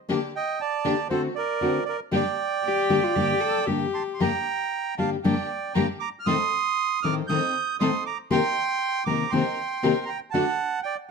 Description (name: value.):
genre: tango.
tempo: 118 BPM.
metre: 4/4.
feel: rubato.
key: G minor.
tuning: A4 = 440 Hz.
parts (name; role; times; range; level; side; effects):
nylon-string guitar; accompaniment; 0.1-10.4 s; G2 to G4; -24 LUFS; left 4 dB; none.
rich chamber string section; stabs; 0.1-10.6 s; D3 to Bb4; -32 LUFS; left 2 dB; none.
bandoneon; melody; 0.4-11.0 s; A4 to G6; -26 LUFS; right 6 dB; none.
warm cello; second line; 2.6-4.2 s; F4 to A4; -27 LUFS; left 7 dB; none.
room: light reverb.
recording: close, detailed microphones.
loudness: -22 LUFS.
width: side -5 dB against mid.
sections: 0.0-4.2 A section; 4.2-11.1 B section.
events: none.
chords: 0.1 Gm/D; 1.1 D7; 2.1 Gm; 6.3 Adim; 8.3 Cm7; 10.3 D.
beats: | 0.09 0.60 1.10 1.61 | 2.12 2.64 3.16 3.68 | 4.21 4.72 5.24 5.76 | 6.27 6.78 7.29 7.80 | 8.31 8.82 9.33 9.84 | 10.34 10.85.